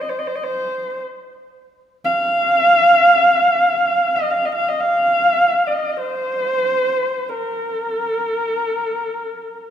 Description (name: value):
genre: mongolian traditional, Mongolian folk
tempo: free time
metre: none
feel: none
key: unclear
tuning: A4 = 435 Hz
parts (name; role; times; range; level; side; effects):
- dark horsehead fiddle; solo; 0.0-9.7 s; Bb4 to F5; -16 LUFS; equal; none
room: wet concert hall reverb, RT60 2.2 s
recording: minimal, uncompressed stereo recording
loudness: -15 LUFS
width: side -9 dB against mid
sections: 0.0-9.7 A section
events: none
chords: none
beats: free time